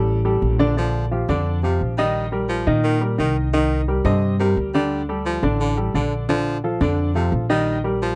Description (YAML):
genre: latin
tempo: 174 BPM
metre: 4/4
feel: straight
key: unclear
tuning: A4 = 437 Hz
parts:
  - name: clear concert grand piano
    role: accompaniment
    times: 0.0-8.1 s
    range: C3 to Eb5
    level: -24 LUFS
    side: equal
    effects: none
  - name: upright bass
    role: bass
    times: 0.0-8.1 s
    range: A1 to Bb2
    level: -24 LUFS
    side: equal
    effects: none
  - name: clear baritone saxophone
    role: second line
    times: 0.8-8.2 s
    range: C3 to G3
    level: -28 LUFS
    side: equal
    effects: none
room: little or no reverb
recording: dry, close 1970s-style studio recording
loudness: -21 LUFS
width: mono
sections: 0.8-8.2 A section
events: none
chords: 0.0 Dsus4; 0.8 Bb6; 2.2 Eb/Bb; 3.5 Cm7; 4.9 Dsus4; 6.3 Bbmaj7